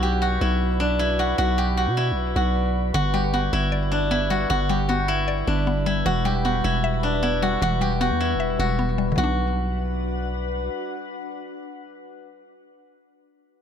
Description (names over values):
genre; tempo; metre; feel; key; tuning
hip hop; 154 BPM; 4/4; half-time; B minor; A4 = 440 Hz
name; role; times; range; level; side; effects
steel-string zither; melody; 0.0-11.6 s; D4 to G4; -24 LUFS; right 1 dB; analog delay
glassy FM pad; sustained chords; 0.0-12.1 s; G3 to B5; -30 LUFS; left 4 dB; ensemble chorus, built-in reverb
growling 808-style bass; bass; 0.0-10.7 s; E1 to B2; -24 LUFS; equal; none
mallet-like synth pluck; accompaniment; 2.9-12.2 s; D3 to E5; -28 LUFS; left 4 dB; chorus, analog delay
room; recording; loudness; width
digital ambience; echo-heavy mix; -20 LUFS; side -8 dB against mid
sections
0.0-9.2 A section; 9.2-12.3 B section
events
none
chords
0.0 Bm; 2.9 G; 6.1 Em; 9.2 Bm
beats
0.21 0.60 0.99 | 1.38 1.77 2.16 2.55 | 2.94 3.33 3.72 4.11 | 4.50 4.89 5.28 5.67 | 6.06 6.45 6.84 7.23 | 7.62 8.01 8.40 8.79 | 9.18 9.57 9.96 10.35 | 10.73 11.12 11.51 11.90